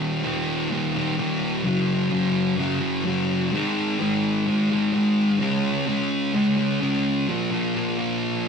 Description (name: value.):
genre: rock.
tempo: 128 BPM.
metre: 4/4.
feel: straight.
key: unclear.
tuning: A4 = 442 Hz.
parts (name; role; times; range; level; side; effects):
thick fuzz guitar; solo; 0.0-8.5 s; Eb2 to Db4; -21 LUFS; equal; distortion.
room: wet studio reverb, RT60 0.5 s.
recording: rough rehearsal-room recording.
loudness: -21 LUFS.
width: side -6 dB against mid.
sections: 0.0-7.3 A section; 7.3-8.5 B section.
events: none.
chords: 0.0 Eb5; 1.6 Gb5; 3.5 Ab5; 5.4 Db5; 7.3 Bb5.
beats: 0.21 0.68 1.15 | 1.62 2.09 2.56 3.03 | 3.50 3.97 4.45 4.92 | 5.39 5.86 6.33 6.80 | 7.27 7.74 8.20.